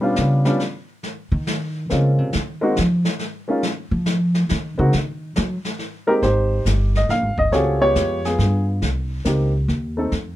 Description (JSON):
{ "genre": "jazz piano trio", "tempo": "139 BPM", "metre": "3/4", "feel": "swing 66% on 8ths", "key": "Ab major from 6.2 s", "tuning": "A4 = 440 Hz", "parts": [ { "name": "warm baby grand piano", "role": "melody", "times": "0.0-10.1 s", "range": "G3 to F5", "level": "-20 LUFS", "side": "equal", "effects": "none" }, { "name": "upright bass", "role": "bass", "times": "0.0-10.4 s", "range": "G1 to Gb3", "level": "-20 LUFS", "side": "equal", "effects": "none" }, { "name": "jazz brush drum kit", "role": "drums", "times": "0.2-10.4 s", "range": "brushed snare drum, hi-hat, kick drum, snare drum", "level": "-28 LUFS", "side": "left 1 dB", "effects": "none" } ], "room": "little or no reverb", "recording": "none", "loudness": "-18 LUFS", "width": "side -14 dB against mid", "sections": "0.0-6.2 A section; 6.2-10.4 B section", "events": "upright bass solo 0.0-6.2", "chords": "0.0 G7#11; 1.0 Bbm11; 2.3 Ab5; 3.6 Dbadd9 (rootless); 4.9 Ab7(no3) (rootless); 6.2 Abmaj7; 7.5 Db7#11; 8.8 Cm" }